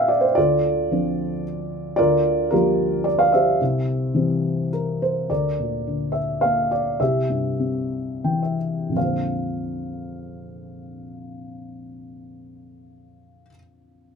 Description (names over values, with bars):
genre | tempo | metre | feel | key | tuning
classical, lyrical solo piano | 79-112 BPM | 3/4 | rubato | Bb lydian | A4 = 439 Hz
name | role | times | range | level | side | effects
felt-muted upright piano | solo | 0.0-14.2 s | Bb1 to G5 | -20 LUFS | equal | none
room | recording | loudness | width
moderate studio reverb, RT60 0.6 s | minimal, uncompressed stereo recording | -19 LUFS | side -6 dB against mid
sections
0.0-5.3 A section; 5.3-9.0 B section; 9.0-13.4 C section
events
slowing down 5.3-9.0; felt piano fill 7.9-9.0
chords
0.4 Dm7; 2.0 Gm7/D; 3.6 C; 5.3 Bb/D; 7.0 C; 9.0 Bbadd9